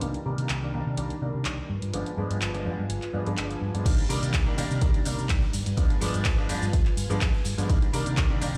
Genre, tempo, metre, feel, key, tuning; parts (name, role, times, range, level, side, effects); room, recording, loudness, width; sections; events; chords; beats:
filtered disco house; 125 BPM; 4/4; swing 53% on 16ths; C minor; A4 = 440 Hz
bright baby grand piano; accompaniment; 0.0-8.6 s; Eb3 to D4; -35 LUFS; equal; phaser, sidechain pumping, low-pass filter
string machine, full ensemble; sustained chords; 0.0-8.6 s; Eb3 to Bb5; -41 LUFS; equal; ensemble chorus, sidechain pumping, low-pass filter
fingered electric bass; bass; 0.0-8.6 s; G1 to C3; -32 LUFS; equal; sidechain pumping, low-pass filter
punchy analog drum machine; drums; 0.0-8.6 s; crash cymbal, handclaps, hi-hat, ride cymbal, shaker; -36 LUFS; equal; sidechain pumping on hats, sidechain pumping on cymbals, sidechain pumping on perc
tambourine; percussion; 0.0-8.6 s; -47 LUFS; equal
electronic kick drum; drums; 3.9-8.3 s; -27 LUFS; equal
light reverb; played on a big sound system in a bare room, large studio reverb; -27 LUFS; mono
0.0-3.9 A section; 3.9-8.6 B section
filter sweep 0.0-3.9; drop 3.9-8.6
0.0 Cm9; 1.7 G7b9; 3.9 Cm9; 5.5 G7b9; 7.7 Cm9
| 0.02 0.50 0.98 1.46 | 1.94 2.42 2.90 3.38 | 3.86 4.34 4.82 5.30 | 5.78 6.26 6.74 7.22 | 7.70 8.18